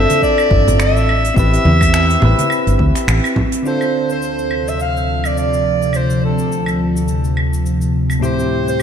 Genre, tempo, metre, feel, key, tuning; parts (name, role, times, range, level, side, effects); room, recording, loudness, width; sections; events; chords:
sunset chillout; 105 BPM; 4/4; swing 57% on 16ths; A4 = 440 Hz
warm soprano saxophone; melody; 0.0-8.8 s; A4 to F5; -19 LUFS; equal; diffuse ambient delay
soft electric-piano-like synth keys; accompaniment; 0.0-8.8 s; A2 to C5; -21 LUFS; moving between left 1 dB and right 5 dB; chorus, tremolo, auto-pan, tape echo
fingered electric bass; bass; 0.0-3.2 s; G1 to E2; -14 LUFS; equal
jazz brush drum kit; drums; 0.1-8.8 s; cabasa, claves, finger snaps, hi-hat; -24 LUFS; right 1 dB
congas; percussion; 0.1-3.5 s; -22 LUFS; right 2 dB
electronic kick drum; drums; 0.2-3.5 s; -19 LUFS; equal
lush unison pad; sustained chords; 4.4-8.8 s; D2 to C5; -17 LUFS; equal; chorus
concert harp; arpeggios; 8.2-8.8 s; G4; -22 LUFS; left 7 dB; tape echo
wet lush hall reverb, RT60 2.6 s; dreamy mix soaked in reverb; -13 LUFS; side -8 dB against mid
0.0-3.6 A section; 3.6-8.8 B section
filter sweep on synth keys 0.0-3.6; filter sweep on analog synth pad 3.6-8.8
0.0 G9sus4; 1.1 Am7; 3.6 Dm7; 8.2 Am7